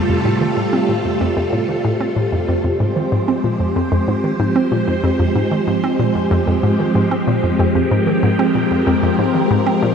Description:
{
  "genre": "ambient",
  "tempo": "94 BPM",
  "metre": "4/4",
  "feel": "straight",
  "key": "F minor",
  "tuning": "A4 = 440 Hz",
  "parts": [
    { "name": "phased string machine", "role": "sustained chords", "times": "0.0-9.9 s", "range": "C3 to C5", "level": "-17 LUFS", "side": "equal", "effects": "ensemble chorus, phaser" },
    { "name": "hollow square pluck", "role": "riff", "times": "0.1-9.9 s", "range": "F2 to C4", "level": "-18 LUFS", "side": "equal", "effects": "chorus, tape echo" }
  ],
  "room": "wet huge ambient reverb, RT60 7.6 s",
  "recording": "none",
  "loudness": "-15 LUFS",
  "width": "side -7 dB against mid",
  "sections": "0.0-2.6 A section; 2.6-9.9 B section",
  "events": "filter sweep on synth arpeggio sound 0.0-2.6",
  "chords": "0.0 Fadd9; 2.6 Fmadd9",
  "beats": "| 0.09 0.73 1.37 2.01 | 2.65 3.29 3.92 4.56 | 5.20 5.84 6.48 7.12 | 7.75 8.39 9.03 9.67"
}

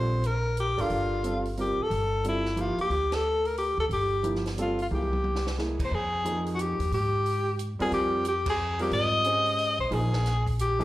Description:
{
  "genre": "modal jazz",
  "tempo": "180 BPM",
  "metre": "3/4",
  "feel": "swing 63% on 8ths",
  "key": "G dorian, F minor from 5.9 s",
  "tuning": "A4 = 440 Hz",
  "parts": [
    { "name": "clear alto saxophone", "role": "melody", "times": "0.0-10.8 s", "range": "E4 to Eb5", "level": "-27 LUFS", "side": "left 1 dB", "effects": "slapback echo" },
    { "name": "warm grand piano", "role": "accompaniment", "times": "0.0-10.8 s", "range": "F3 to C5", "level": "-31 LUFS", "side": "right 2 dB", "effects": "slapback echo" },
    { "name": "upright bass", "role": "bass", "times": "0.0-10.8 s", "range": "G1 to C3", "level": "-30 LUFS", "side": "equal", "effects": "none" },
    { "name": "compact cocktail drum kit", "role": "drums", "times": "0.2-10.8 s", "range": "crash cymbal, hi-hat, kick drum, ride cymbal, snare drum, toms", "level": "-38 LUFS", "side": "right 1 dB", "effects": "none" }
  ],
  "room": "light reverb",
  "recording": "live gig heard through the venue's PA, club reverb",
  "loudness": "-25 LUFS",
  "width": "side -15 dB against mid",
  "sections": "0.0-5.9 A section; 5.9-10.8 B section",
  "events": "band accent 3.1, 8.4; drum fill 4.9-5.6",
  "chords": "0.0 Gm9; 4.9 C7b13; 5.9 Fm9; 9.9 Bb7(no3)",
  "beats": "0.23 0.56 | 0.90 1.23 1.57 | 1.90 2.24 2.57 | 2.91 3.24 3.58 | 3.91 4.24 4.58 | 4.91 5.25 5.58 | 5.92 6.25 6.58 | 6.92 7.25 7.58 | 7.92 8.25 8.59 | 8.92 9.25 9.59 | 9.92 10.26 10.59"
}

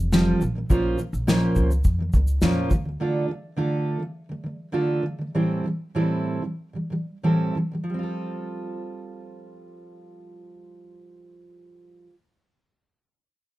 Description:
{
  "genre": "acoustic pop",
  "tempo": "89-105 BPM",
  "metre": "4/4",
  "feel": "straight",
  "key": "F major",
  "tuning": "A4 = 440 Hz",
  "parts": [
    { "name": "fingerpicked steel-string acoustic guitar", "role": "accompaniment", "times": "0.0-12.2 s", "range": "A2 to C5", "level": "-24 LUFS", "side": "right 1 dB", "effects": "none" },
    { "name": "upright bass", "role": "bass", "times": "0.0-2.9 s", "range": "F1 to F2", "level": "-24 LUFS", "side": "equal", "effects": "none" },
    { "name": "unplugged drum kit", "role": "drums", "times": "0.1-2.8 s", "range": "kick drum, shaker, snare drum", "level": "-23 LUFS", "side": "equal", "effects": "none" }
  ],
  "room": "light reverb",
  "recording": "dark, warm production",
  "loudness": "-22 LUFS",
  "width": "side -16 dB against mid",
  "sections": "0.0-7.9 A section; 7.9-10.6 B section",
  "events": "slowing down 3.0-7.9",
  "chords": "0.4 Bbmadd9; 2.7 Dm; 5.3 Am7; 7.9 Fadd9",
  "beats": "0.12 | 0.70 1.27 1.85 2.42 | 3.00 3.57 4.15 4.74 | 5.34 5.95 6.58 7.22 | 7.89 8.56 9.24 9.91"
}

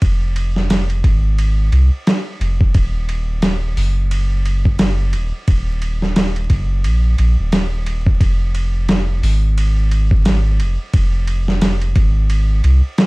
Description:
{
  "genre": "trip hop",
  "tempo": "88 BPM",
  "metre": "4/4",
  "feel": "swing 58% on 16ths",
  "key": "F phrygian",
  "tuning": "A4 = 440 Hz",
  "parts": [
    { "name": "soft dub sub bass", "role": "bass", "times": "0.0-12.8 s", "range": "Eb1 to C2", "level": "-15 LUFS", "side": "equal", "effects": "none" },
    { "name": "dusty soul sampler-style drum kit", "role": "drums", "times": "0.0-13.1 s", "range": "hi-hat, kick drum, ride cymbal, snare drum", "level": "-18 LUFS", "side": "equal", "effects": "overdrive" }
  ],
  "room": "little or no reverb",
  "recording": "dark, warm production, vinyl crackle",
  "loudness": "-14 LUFS",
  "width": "side -24 dB against mid",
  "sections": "0.0-13.1 A section",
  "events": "none",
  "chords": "none",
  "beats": "| 0.02 0.70 1.39 2.07 | 2.75 3.43 4.11 4.80 | 5.48 6.16 6.84 7.52 | 8.21 8.89 9.57 10.25 | 10.93 11.61 12.30 12.98"
}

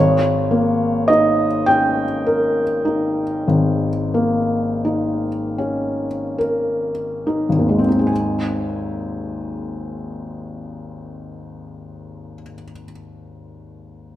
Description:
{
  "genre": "classical, romantic nocturne for solo piano",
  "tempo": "21-37 BPM (dotted quarters)",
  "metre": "12/8",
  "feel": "rubato",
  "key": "Ab major",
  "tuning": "A4 = 439 Hz",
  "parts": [
    { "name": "felt-muted upright piano", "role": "solo", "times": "0.0-14.2 s", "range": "Ab1 to Ab5", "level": "-18 LUFS", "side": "equal", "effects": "none" }
  ],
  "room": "wet recital hall reverb, RT60 1.7 s",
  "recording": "none",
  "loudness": "-17 LUFS",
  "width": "side -13 dB against mid",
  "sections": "0.0-8.1 A section; 8.1-14.2 B section",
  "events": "slowing down 0.0-8.1",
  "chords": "0.0 Eb7/Ab; 8.1 Ab",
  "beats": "1.67 3.48 5.58 | 8.09 10.25 12.36"
}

